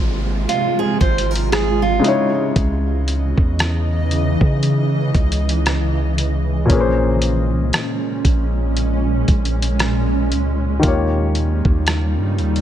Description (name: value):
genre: contemporary R&B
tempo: 58 BPM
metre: 4/4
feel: swing 58% on 16ths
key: unclear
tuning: A4 = 439 Hz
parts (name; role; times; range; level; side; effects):
- warm grand piano; accompaniment; 0.0-12.6 s; Bb2 to Db5; -22 LUFS; left 3 dB; none
- granular cloud pad; sustained chords; 0.0-12.6 s; Bb2 to Eb5; -22 LUFS; right 2 dB; built-in reverb
- long sustained 808-style bass; bass; 0.0-12.6 s; Ab1 to Db3; -19 LUFS; equal; none
- downlifter; sound effects; 0.0-6.7 s; none; -34 LUFS; equal; none
- fingerpicked steel-string acoustic guitar; arpeggios; 0.5-2.3 s; F4 to C5; -22 LUFS; right 5 dB; ping-pong delay
- dusty soul sampler-style drum kit; drums; 0.5-12.6 s; hi-hat, kick drum, rim click; -19 LUFS; equal; vintage 12-bit sampler grit
room: little or no reverb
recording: none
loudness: -15 LUFS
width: side -10 dB against mid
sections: 0.0-12.6 A section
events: none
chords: 0.0 Ab6; 2.0 Dbmadd9; 6.7 Bbm7; 10.8 Eb7